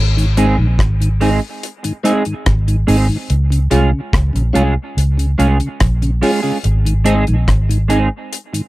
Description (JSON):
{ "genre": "roots reggae", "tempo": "72 BPM", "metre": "4/4", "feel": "straight", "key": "Db major", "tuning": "A4 = 440 Hz", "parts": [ { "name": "vintage muted fingered electric bass", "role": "bass", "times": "0.0-8.1 s", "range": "Ab1 to Db2", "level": "-14 LUFS", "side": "equal", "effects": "none" }, { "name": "mellow tonewheel organ", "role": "accompaniment", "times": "0.2-8.6 s", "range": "Ab2 to F4", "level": "-19 LUFS", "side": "left 1 dB", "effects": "slow rotary speaker" }, { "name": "deep reggae drum kit", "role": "drums", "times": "0.2-8.7 s", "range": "hi-hat, kick drum, rim click", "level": "-20 LUFS", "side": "equal", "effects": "none" }, { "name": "clean electric guitar", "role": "accompaniment", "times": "0.4-8.6 s", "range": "Ab3 to Ab4", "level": "-18 LUFS", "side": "right 2 dB", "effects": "analog chorus, tape echo" } ], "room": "little or no reverb", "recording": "none", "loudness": "-13 LUFS", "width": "side -18 dB against mid", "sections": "0.0-8.7 A section", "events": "none", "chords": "0.0 Ab; 3.3 Db; 6.6 Ab", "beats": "0.79 1.63 2.46 | 3.30 4.13 4.97 5.81 | 6.64 7.48 8.32" }